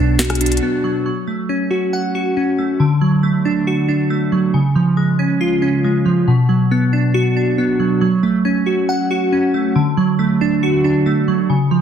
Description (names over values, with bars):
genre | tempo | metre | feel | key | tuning
hip hop, trap | 138 BPM | 4/4 | half-time | F# harmonic minor | A4 = 442 Hz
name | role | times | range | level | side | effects
glassy digital keys | accompaniment | 0.0-11.8 s | B2 to F#5 | -14 LUFS | right 1 dB | chorus
hard-hitting 808-style bass | bass | 0.0-0.6 s | B1 | -18 LUFS | equal | none
trap drum kit | drums | 0.2-0.6 s | hi-hat, rim click, snare drum | -21 LUFS | left 1 dB | none
room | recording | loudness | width
little or no reverb | dense, heavily limited modern master | -14 LUFS | side -8 dB against mid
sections
0.0-1.1 A section; 1.1-8.0 B section; 8.0-11.8 A section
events
break 0.6-1.1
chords
0.0 Bm; 1.1 F#m; 2.8 D; 4.5 C#; 6.3 Bm; 8.0 F#m; 9.8 D